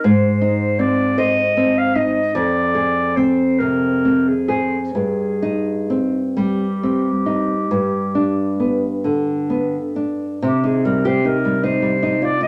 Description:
romantic duo for clarinet and classical guitar; 41-55 BPM (dotted quarters); 12/8; rubato; C minor; A4 = 440 Hz
warm clarinet; melody; 0.0-12.5 s; G4 to F5; -24 LUFS; equal
nylon-string guitar; accompaniment; 0.0-12.5 s; F2 to C5; -20 LUFS; equal
wet studio reverb, RT60 0.5 s; -19 LUFS; mono
0.0-10.4 A section; 10.4-12.5 B section
0.0 Ab; 2.3 Fm; 4.9 Cm/G; 7.7 G; 10.4 Cm

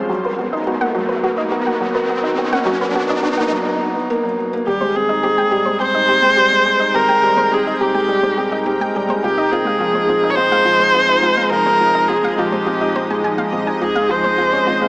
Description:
piano and strings electronica; 105 BPM; 4/4; straight; A4 = 441 Hz
granular cloud pad; sustained chords; 0.0-14.9 s; Ab3 to G5; -26 LUFS; equal; built-in reverb
soft round pluck; arpeggios; 0.0-14.9 s; F4 to Ab5; -24 LUFS; equal; chorus, tape echo
felt-muted upright piano; riff; 0.0-14.9 s; F3 to A#4; -20 LUFS; equal; tape echo
riser; sound effects; 0.0-3.5 s; -24 LUFS; equal
round analog bass; bass; 0.1-14.9 s; Eb1 to Db2; -39 LUFS; equal; high-pass filter
warm viola; melody; 4.7-14.9 s; G4 to Db5; -15 LUFS; equal
moderate huge ambient reverb, RT60 5.3 s; small speaker sound; -14 LUFS; side -30 dB against mid
0.0-4.7 A section; 4.7-14.9 B section
build-up 0.0-4.7; riser 0.0-3.5; break 3.5-4.7; drop 4.7-14.9
0.1 Bmaj7; 4.7 Abmaj7; 9.2 Fm7; 13.8 Dbmaj7

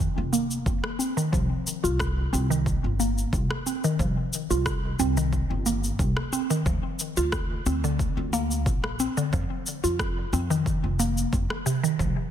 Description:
organic downtempo; 90 BPM; 4/4; straight; A4 = 440 Hz
upright bass; bass; 0.0-12.1 s; F1 to F2; -27 LUFS; equal; sidechain pumping
electronic shaker and rim click; drums; 0.0-12.1 s; -32 LUFS; left 1 dB; small room ambience, soft clipping on snare
mallet-like synth pluck; arpeggios; 0.3-12.3 s; C3 to F4; -27 LUFS; equal; chorus, phaser, ping-pong delay
electronic kick drum; drums; 0.7-12.1 s; -29 LUFS; equal; small room ambience
light reverb; dense, heavily limited modern master; -23 LUFS; side -10 dB against mid
0.0-12.3 A section
filter sweep on synth pluck 0.0-12.3
0.0 F5; 1.3 C5; 6.7 Bbadd9/D; 9.3 F5

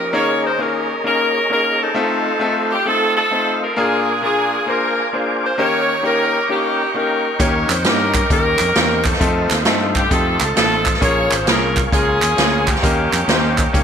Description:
uptempo gospel; 132 BPM; 4/4; swing 66% on 8ths; A4 = 439 Hz
bright saxophone section; melody; 0.0-13.8 s; Bb3 to Db5; -18 LUFS; equal; tape echo
tonewheel organ; sustained chords; 0.0-13.8 s; G4 to D6; -24 LUFS; right 1 dB; slow rotary speaker, chorus vibrato
clear concert grand piano; accompaniment; 0.1-13.8 s; Bb2 to Db5; -21 LUFS; left 2 dB
fingered electric bass; bass; 7.4-13.8 s; Ab1 to G2; -23 LUFS; equal
swinging big-band drum kit; drums; 7.4-13.8 s; hi-hat, kick drum, snare drum; -18 LUFS; right 1 dB
group handclap; percussion; 7.7-13.7 s; -22 LUFS; right 6 dB
light reverb, studio reverb; -14 LUFS; side -7 dB against mid
0.1-13.8 A section
0.1 Eb7sus4; 2.0 F7; 3.8 Bb7; 5.6 Eb7; 9.2 F7; 11.0 Bbm7; 12.8 Eb7

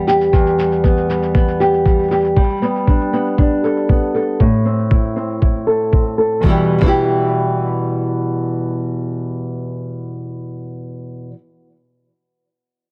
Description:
folktronica; 118 BPM; 4/4; straight; E minor; A4 = 442 Hz
nylon-string guitar; arpeggios; 0.0-11.4 s; E2 to A4; -18 LUFS; equal; low-pass filter, tape echo
shaker; drums; 0.1-6.4 s; -39 LUFS; equal; low-pass filter on perc, studio ambience, low-pass filter on snare
electronic kick drum; drums; 0.3-7.0 s; -16 LUFS; equal; studio ambience
little or no reverb; -16 LUFS; mono
0.0-6.4 A section; 6.4-10.5 B section
filter sweep on drum 0.0-6.4; filter sweep on nylon-string guitar 0.0-6.4
0.0 Em; 2.4 Gadd9; 4.4 Am; 6.4 Em

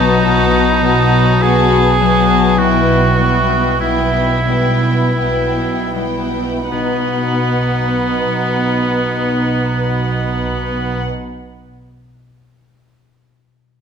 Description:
classical, slow romantic movement for symphony orchestra; 37-58 BPM; 3/4; rubato; B major; A4 = 440 Hz
warm studio violin section; melody; 0.0-11.1 s; F#5 to A5; -24 LUFS; left 5 dB
clear oboe; second line; 0.0-11.0 s; B3 to G#4; -18 LUFS; right 2 dB
warm symphonic violin section; second line; 0.0-11.0 s; D#4 to F#4; -22 LUFS; left 3 dB
dark symphonic viola section; accompaniment; 0.0-11.0 s; B3; -21 LUFS; right 1 dB
concert harp; arpeggios; 0.0-11.3 s; B2 to D#5; -21 LUFS; left 10 dB
warm symphonic cello section; bass; 0.0-11.1 s; B2; -21 LUFS; right 2 dB
warm symphonic double bass section; bass; 0.0-11.0 s; B1; -22 LUFS; right 3 dB
wet recital hall reverb, RT60 1.6 s; -12 LUFS; side -7 dB against mid
0.0-6.7 A section; 6.7-11.2 B section
slowing down 0.0-6.7
0.0 B7; 2.6 Em/B; 6.7 B

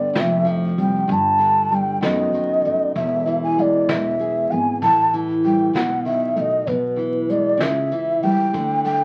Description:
acoustic folk duo or small band; 64 BPM (dotted quarters); 6/8; straight; A4 = 439 Hz
mellow hollow long shakuhachi; melody; 0.0-9.0 s; B4 to A5; -22 LUFS; equal
nylon-string guitar; accompaniment; 0.0-9.0 s; E2 to G#4; -24 LUFS; equal
upright bass; bass; 0.0-9.0 s; E1 to D2; -30 LUFS; equal
vintage brush drum kit; drums; 0.2-9.0 s; hi-hat, kick drum, snare drum; -29 LUFS; equal
wet club reverb, RT60 0.6 s; very old 78 rpm record, vinyl crackle; -19 LUFS; mono
0.0-9.0 A section
0.2 Fsus2; 1.1 G5; 2.0 B7/F#; 3.0 E; 4.8 A5; 5.7 B7; 6.7 E/B; 7.6 C#dim; 8.5 D5

